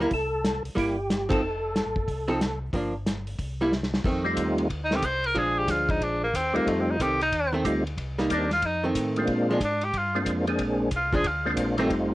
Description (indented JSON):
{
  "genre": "soul jazz organ trio",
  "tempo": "183 BPM",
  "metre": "4/4",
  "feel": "swing 64% on 8ths",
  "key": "F mixolydian",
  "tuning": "A4 = 441 Hz",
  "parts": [
    { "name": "percussive tonewheel organ", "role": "melody", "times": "0.0-12.1 s", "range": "G3 to Bb4", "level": "-26 LUFS", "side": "equal", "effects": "slow rotary speaker, chorus vibrato, cassette tape" },
    { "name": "archtop guitar, miked and amplified", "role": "accompaniment", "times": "0.0-11.9 s", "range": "Eb3 to A4", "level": "-27 LUFS", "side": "right 1 dB", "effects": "cassette tape" },
    { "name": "mellow tonewheel organ", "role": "bass", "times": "0.0-12.1 s", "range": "F1 to Bb2", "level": "-33 LUFS", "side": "equal", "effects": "chorus vibrato, slow rotary speaker" },
    { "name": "warm soul drum kit", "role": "drums", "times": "0.1-12.0 s", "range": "crash cymbal, hi-hat, kick drum, ride cymbal, snare drum", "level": "-31 LUFS", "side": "equal", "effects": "cassette tape" },
    { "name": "clear tenor saxophone", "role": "melody", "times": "4.8-11.5 s", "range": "A3 to C5", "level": "-26 LUFS", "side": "equal", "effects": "cassette tape" }
  ],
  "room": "moderate booth ambience, RT60 0.2 s",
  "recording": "home recording on cassette",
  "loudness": "-23 LUFS",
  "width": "side -17 dB against mid",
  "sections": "0.0-4.0 A section; 4.0-12.1 B section",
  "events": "band accent 1.3; drum fill 3.7-4.0; tenor saxophone solo 4.0-12.1",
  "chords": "0.1 C7; 1.4 F; 2.7 Gm7; 3.4 C7; 4.0 F7; 5.4 Bb7; 6.7 F7; 8.0 Cm7; 8.6 F7; 9.3 Bb7"
}